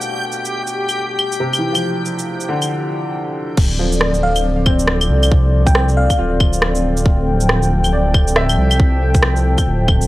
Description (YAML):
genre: future garage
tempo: 138 BPM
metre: 4/4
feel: swing 61% on 16ths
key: D minor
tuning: A4 = 440 Hz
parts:
  - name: clear upright piano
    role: accompaniment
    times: 0.0-10.1 s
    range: B2 to E5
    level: -24 LUFS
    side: equal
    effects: sidechain pumping, tape echo
  - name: dark analog pad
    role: sustained chords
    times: 0.0-10.1 s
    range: F3 to G5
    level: -22 LUFS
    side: left 1 dB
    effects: chorus, sidechain pumping
  - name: organic electronic drum kit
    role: drums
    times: 0.0-10.1 s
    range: claves, crash cymbal, rim click, shaker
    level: -19 LUFS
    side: equal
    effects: none
  - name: backwards swelling texture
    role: texture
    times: 0.0-2.7 s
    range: G4 to G5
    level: -24 LUFS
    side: left 2 dB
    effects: built-in reverb
  - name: dark detuned saw bass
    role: bass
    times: 3.6-10.1 s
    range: D1 to C2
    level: -16 LUFS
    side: equal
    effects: sidechain pumping
  - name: electronic kick drum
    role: drums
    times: 3.6-10.0 s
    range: none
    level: -14 LUFS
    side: equal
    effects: none
  - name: bell-like FM electric piano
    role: melody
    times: 4.2-6.6 s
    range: F5 to G5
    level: -24 LUFS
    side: equal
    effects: chorus, tremolo, vintage 12-bit sampler grit, tape echo
room: digital ambience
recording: dry, gritty hardware recording, vinyl crackle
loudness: -14 LUFS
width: side -17 dB against mid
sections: 0.0-3.6 A section; 3.6-10.1 B section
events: filter sweep on analog synth pad 0.0-3.6; filter sweep on upright piano 0.0-3.6; break 2.7-3.6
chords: 0.0 Dm7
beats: | 0.10 0.53 0.97 1.40 | 1.84 2.27 2.71 3.14 | 3.58 4.01 4.45 4.88 | 5.32 5.75 6.18 6.62 | 7.05 7.49 7.92 8.36 | 8.79 9.23 9.66